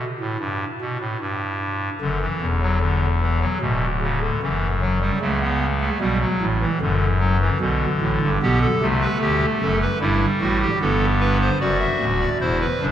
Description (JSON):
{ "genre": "classical, baroque-style 4-part fugue for pipe organ", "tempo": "75 BPM", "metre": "4/4", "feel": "straight", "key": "unclear", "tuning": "A4 = 439 Hz", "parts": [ { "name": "pipe organ, clarinet reed", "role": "solo", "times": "0.0-12.9 s", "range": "D1 to E5", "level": "-19 LUFS", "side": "equal", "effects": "none" } ], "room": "wet cathedral reverb, RT60 4.9 s", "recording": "dark, warm production", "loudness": "-19 LUFS", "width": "side -10 dB against mid", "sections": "0.0-12.9 A section", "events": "none", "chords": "0.0 N.C.; 2.0 D; 3.6 Bm/D; 5.2 A/C#; 6.8 D/F#; 8.4 G/B; 10.0 Em/G; 11.6 D" }